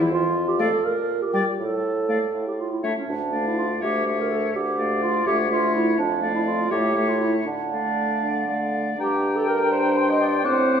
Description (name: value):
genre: quick classical-period movement for wind quintet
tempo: 82 BPM (dotted quarters)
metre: 6/8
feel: rubato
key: D minor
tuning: A4 = 439 Hz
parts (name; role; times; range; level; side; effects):
- mellow hollow concert flute; melody; 0.0-10.8 s; E4 to D6; -29 LUFS; left 7 dB; none
- mellow French horn; accompaniment; 0.0-10.8 s; E3 to D4; -29 LUFS; left 1 dB; none
- mellow bassoon; bass; 0.0-10.8 s; D2 to D3; -27 LUFS; right 1 dB; none
- dark clarinet; accompaniment; 0.1-10.8 s; C#4 to Eb5; -24 LUFS; right 3 dB; none
- clear oboe; second line; 0.6-10.8 s; C#5 to G5; -30 LUFS; left 3 dB; none
room: wet recital hall reverb, RT60 1.4 s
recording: heard from further back in the room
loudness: -20 LUFS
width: side -8 dB against mid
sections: 0.0-9.0 A section; 9.0-10.8 B section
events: none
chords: 0.1 Dm/F (rootless); 0.8 Gm/Bb; 1.6 N.C.; 2.3 A; 3.1 Dm; 3.8 A7/D; 4.5 Dm; 5.3 A/D; 6.0 Dm/F; 6.7 A7; 7.5 Dm; 9.0 Gm